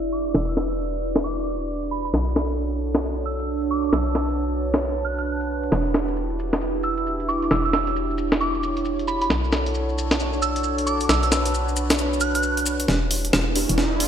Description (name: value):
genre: UK garage, two-step garage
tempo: 134 BPM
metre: 4/4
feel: swing 62% on 16ths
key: E dorian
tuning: A4 = 441 Hz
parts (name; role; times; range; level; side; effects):
- warm analog pad; sustained chords; 0.0-14.1 s; D4 to C#5; -29 LUFS; right 1 dB; chorus
- hollow knocking FM bass; bass; 0.0-14.1 s; E1 to B1; -27 LUFS; equal; tube saturation
- breakbeat sampler-style drum kit; drums; 0.0-14.1 s; hi-hat, rim click, snare drum; -24 LUFS; equal; none
- warbly tape-like pad; texture; 0.0-14.1 s; D4 to A5; -28 LUFS; right 2 dB; chorus, built-in reverb
- soft synth bell; melody; 0.1-12.7 s; B5 to F#6; -28 LUFS; right 3 dB; chorus, analog delay
- maracas; percussion; 5.7-12.9 s; none; -33 LUFS; left 4 dB; none
- deep mellow chord stab; stabs; 12.9-14.1 s; D4 to D5; -31 LUFS; right 2 dB; none
- riser; sound effects; 13.1-14.1 s; none; -31 LUFS; right 2 dB; none
room: moderate lush hall reverb, RT60 1.6 s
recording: dreamy mix soaked in reverb, low-pass filter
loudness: -20 LUFS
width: side -8 dB against mid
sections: 0.0-12.9 A section; 12.9-14.1 B section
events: filter sweep on analog synth pad 0.0-12.9; filter sweep 0.0-12.9; build-up 12.9-14.1; drum fill 12.9-14.1; riser 13.1-14.1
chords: 0.0 Em7; 2.1 Bm9; 5.7 Em7; 9.3 Bm9; 12.9 Em7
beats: | 0.35 0.79 1.24 1.69 | 2.14 2.58 3.03 3.48 | 3.93 4.38 4.82 5.27 | 5.72 6.17 6.62 7.06 | 7.51 7.96 8.41 8.85 | 9.30 9.75 10.20 10.64 | 11.09 11.54 11.99 12.44 | 12.88 13.33 13.78